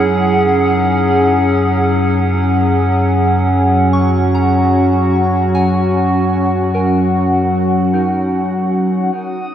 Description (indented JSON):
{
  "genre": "ambient",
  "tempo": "75 BPM",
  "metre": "4/4",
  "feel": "straight",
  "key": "unclear",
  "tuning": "A4 = 441 Hz",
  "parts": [
    { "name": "warbly tape-like pad", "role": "sustained chords", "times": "0.0-9.5 s", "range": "F#3 to F#5", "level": "-13 LUFS", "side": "equal", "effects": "chorus, built-in reverb, shimmer reverb" },
    { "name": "soft synth bell", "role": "arpeggios", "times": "0.0-9.5 s", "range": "D#4 to C#6", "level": "-28 LUFS", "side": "equal", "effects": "chorus, phaser, diffuse ambient delay, shimmer reverb" },
    { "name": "round analog bass", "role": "bass", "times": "0.0-9.1 s", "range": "F#2", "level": "-18 LUFS", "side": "equal", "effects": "none" }
  ],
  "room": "wet huge ambient reverb, RT60 8.1 s",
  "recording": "none",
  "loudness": "-12 LUFS",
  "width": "side -10 dB against mid",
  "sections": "0.0-9.2 A section",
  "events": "fade-out on synth bell 0.0-9.2",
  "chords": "0.0 F#add9"
}